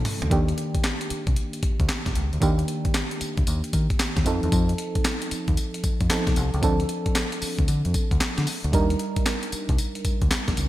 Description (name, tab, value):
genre	R&B, new jack swing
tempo	114 BPM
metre	4/4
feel	swing 64% on 16ths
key	unclear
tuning	A4 = 440 Hz
part	FM electric piano with tremolo	accompaniment	0.0-10.7 s	Eb3 to Bb4	-28 LUFS	right 1 dB	none
part	deep dub fingered electric bass	bass	0.0-10.7 s	Bb1 to Eb3	-25 LUFS	equal	none
part	breakbeat sampler-style drum kit	drums	0.1-10.7 s	handclaps, hi-hat, kick drum, snare drum, tambourine, toms	-24 LUFS	equal	none
room	light reverb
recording	bright 1980s-style digital production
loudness	-22 LUFS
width	side -15 dB against mid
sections	0.3-10.7 A section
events	drum fill 0.0-0.3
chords	0.3 Ebmaj7; 4.3 F7; 6.6 Dm7; 8.7 Ebmaj7